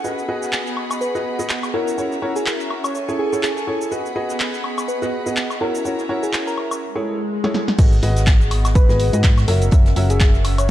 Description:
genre	piano house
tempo	124 BPM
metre	4/4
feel	swing 57% on 16ths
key	G# minor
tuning	A4 = 441 Hz
part	soft struck synth lead	melody	0.0-10.7 s	G#4 to C#5	-26 LUFS	left 1 dB	chorus, vintage 12-bit sampler grit, dub echo
part	rich chamber string section	sustained chords	0.0-6.8 s	F#4 to C#6	-31 LUFS	left 1 dB	sidechain pumping
part	clear upright piano	riff	0.0-10.7 s	E4 to E5	-25 LUFS	equal	sidechain pumping, dub echo
part	punchy analog drum machine	drums	0.0-10.7 s	crash cymbal, handclaps, hi-hat, shaker, snare drum, woodblock	-25 LUFS	equal	none
part	swinging big-band drum kit	drums	0.0-10.7 s	hi-hat, snare drum	-38 LUFS	right 2 dB	none
part	airy breathy pad	texture	0.0-10.7 s	B3 to G#5	-29 LUFS	right 1 dB	chorus, sidechain pumping
part	swell	sound effects	6.9-7.8 s	none	-27 LUFS	left 2 dB	none
part	solid FM bass	bass	7.8-10.7 s	F#1 to G#2	-18 LUFS	equal	sidechain pumping
part	electronic kick drum	drums	7.8-10.3 s	none	-14 LUFS	equal	none
room	light reverb, studio reverb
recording	dark, warm production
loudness	-17 LUFS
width	side -13 dB against mid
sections	0.0-7.8 A section; 7.8-10.7 B section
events	swell 6.9-7.8; drum fill 7.4-7.8; drop 7.8-10.7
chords	0.0 G#m7; 1.7 F#7; 2.9 Amaj7; 3.9 G#m7; 5.6 F#7; 6.8 Amaj7; 7.8 G#m7; 9.5 F#7

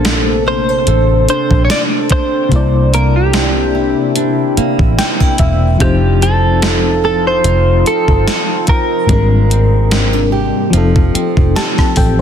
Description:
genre	contemporary R&B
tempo	73 BPM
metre	4/4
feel	swing 54% on 16ths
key	unclear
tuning	A4 = 440 Hz
part	direct-recorded clean electric guitar	melody	0.0-10.3 s	G4 to D5	-17 LUFS	right 1 dB	analog chorus, digital delay
part	FM electric piano with tremolo	accompaniment	0.0-12.2 s	Ab2 to A5	-18 LUFS	left 5 dB	none
part	deep dark ambient pad	sustained chords	0.0-12.2 s	C3 to A4	-20 LUFS	left 2 dB	chorus, built-in reverb
part	flamenco guitar	arpeggios	0.0-12.2 s	C3 to C5	-21 LUFS	right 8 dB	none
part	vintage muted fingered electric bass	bass	0.0-12.2 s	E1 to C2	-14 LUFS	equal	none
part	gated 80s digital drum machine	drums	0.0-12.2 s	hi-hat, kick drum, rim click, snare drum	-15 LUFS	equal	gated reverb, gated reverb snare
room	little or no reverb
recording	dense, heavily limited modern master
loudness	-10 LUFS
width	side -8 dB against mid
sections	0.0-12.2 A section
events	FM electric piano fill 4.6-5.8, 11.1-12.2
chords	0.0 Bbmaj9; 2.5 C9; 5.8 F7; 9.1 Abmaj9#11; 10.7 F7

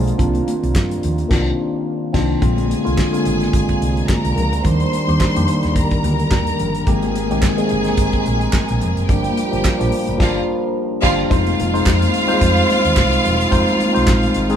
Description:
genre	disco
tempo	108 BPM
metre	4/4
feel	swing 56% on 16ths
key	F dorian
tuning	A4 = 440 Hz
part	mellow tine electric piano	accompaniment	0.0-14.6 s	D3 to C5	-19 LUFS	equal	phaser
part	mellow French horn section	sustained chords	0.0-14.6 s	C3 to Bb4	-27 LUFS	right 2 dB	none
part	hollow-body short-scale fingered electric bass	bass	0.0-14.5 s	E1 to G2	-21 LUFS	equal	none
part	damped 70s drum kit	drums	0.1-14.6 s	crash cymbal, handclaps, hi-hat, kick drum, snare drum	-20 LUFS	equal	none
part	congas	percussion	0.2-14.6 s	none	-29 LUFS	left 4 dB	none
part	clear studio string section	second line	2.4-14.6 s	F4 to C6	-22 LUFS	equal	none
part	group handclap	percussion	7.4-14.2 s	none	-30 LUFS	right 4 dB	none
room	moderate large studio reverb, RT60 1.0 s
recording	band playing live in one room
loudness	-15 LUFS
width	side -9 dB against mid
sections	0.0-2.4 A section; 2.4-11.3 B section; 11.3-14.6 C section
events	band accent 1.3-2.4, 10.2-11.3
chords	0.2 Cm11; 2.4 Bb9; 4.6 Ebmaj7; 6.9 Abmaj9; 9.1 Gm7; 11.3 Fm7

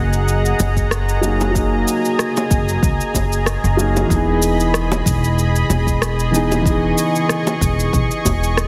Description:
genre	sunset chillout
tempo	94 BPM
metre	4/4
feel	swing 54% on 16ths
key	F# mixolydian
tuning	A4 = 439 Hz
part	dark grand piano	accompaniment	0.0-8.7 s	E3 to G#4	-23 LUFS	equal	low-pass filter, tape echo
part	lush unison pad	sustained chords	0.0-8.7 s	G#4 to C#6	-25 LUFS	equal	chorus
part	upright bass	bass	0.0-8.7 s	E1 to C#2	-21 LUFS	equal	none
part	electronic cabasa and rim click	drums	0.1-8.7 s	none	-27 LUFS	equal	small room ambience
part	bongos	percussion	0.6-8.4 s	none	-25 LUFS	equal	none
part	electronic kick drum	drums	0.8-8.4 s	none	-23 LUFS	equal	small room ambience
room	light reverb, studio reverb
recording	heavily compressed radio sound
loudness	-17 LUFS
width	mono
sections	0.0-8.7 A section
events	filter sweep on grand piano 0.0-8.7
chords	0.0 F#69; 4.1 Emaj7

